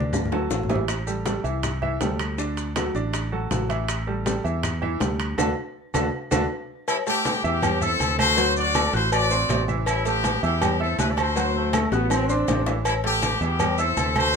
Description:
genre	latin, salsa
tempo	160 BPM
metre	4/4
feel	straight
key	unclear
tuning	A4 = 440 Hz
part	clear baby grand piano	accompaniment	0.0-14.3 s	D3 to F#6	-28 LUFS	right 2 dB	none
part	fingered electric bass	bass	0.0-14.4 s	A1 to E2	-27 LUFS	equal	none
part	congas	percussion	0.0-14.3 s	none	-32 LUFS	left 2 dB	none
part	bongos and cowbell	percussion	0.1-14.3 s	none	-31 LUFS	left 8 dB	none
part	claves	percussion	0.1-14.3 s	none	-37 LUFS	right 2 dB	none
part	maracas	percussion	0.1-14.4 s	none	-37 LUFS	left 8 dB	none
part	timbales and agogo bells	percussion	0.1-14.3 s	none	-30 LUFS	right 4 dB	none
part	brilliant horn section	melody	6.9-14.4 s	G3 to D5	-24 LUFS	left 2 dB	none
part	bright trombone section	second line	11.5-12.8 s	A3 to D4	-26 LUFS	left 1 dB	none
room	moderate studio reverb, RT60 0.8 s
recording	minimal, uncompressed stereo recording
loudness	-21 LUFS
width	side -6 dB against mid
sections	0.0-6.9 A section; 6.9-14.4 B section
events	drum fill 0.0-0.9, 6.3-6.9, 11.9-12.9; band accent 5.4-6.9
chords	0.0 D; 0.9 Am7; 2.4 D; 3.9 A5; 5.4 D; 6.9 Am7; 8.4 D7; 9.9 Am7; 11.4 D7; 12.9 Am7

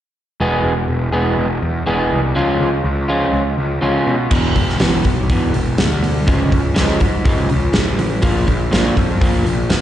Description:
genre	quiet-loud alternative rock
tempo	123 BPM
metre	4/4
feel	straight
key	unclear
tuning	A4 = 441 Hz
part	electric guitar through a small old amp	arpeggios	0.4-9.8 s	E2 to G#4	-18 LUFS	right 1 dB	slapback echo
part	fuzz picked electric bass	bass	0.4-9.8 s	E1 to C#3	-19 LUFS	equal	overdrive
part	big rock drum kit	drums	4.3-9.8 s	crash cymbal, hi-hat, kick drum, snare drum	-17 LUFS	equal	none
room	light reverb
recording	live gig heard through the venue's PA, recital hall reverb, nothing above 10.3 kHz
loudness	-14 LUFS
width	side -12 dB against mid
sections	0.4-4.3 A section; 4.3-9.8 B section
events	none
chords	0.4 E; 2.4 C#; 4.3 E5; 6.3 C#; 8.2 A#5

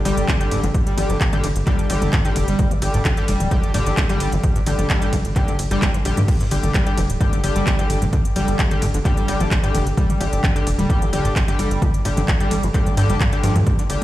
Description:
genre	driving peak-time techno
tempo	130 BPM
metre	4/4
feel	straight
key	unclear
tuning	A4 = 441 Hz
part	sync-sweep polysynth	stabs	0.0-14.0 s	D3 to G4	-25 LUFS	left 2 dB	chorus, cassette tape, sidechain pumping, dub echo
part	overdriven acid bass	riff	0.1-13.8 s	G1 to G3	-25 LUFS	equal	distortion, lush chorus, sidechain pumping, dub echo
part	tight sequencer bass	bass	0.1-14.0 s	D1 to G2	-21 LUFS	equal	sidechain pumping
part	techno drum kit	drums	0.1-14.0 s	crash cymbal, handclaps, hi-hat, ride cymbal, toms	-26 LUFS	equal	sidechain pumping on hats, sidechain pumping on toms, sidechain pumping on cymbals
part	electronic kick drum	drums	0.3-13.8 s	none	-20 LUFS	equal	none
room	light reverb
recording	played on a big sound system in a bare room, large studio reverb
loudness	-16 LUFS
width	side -15 dB against mid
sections	0.0-14.0 A section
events	none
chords	0.0 G5

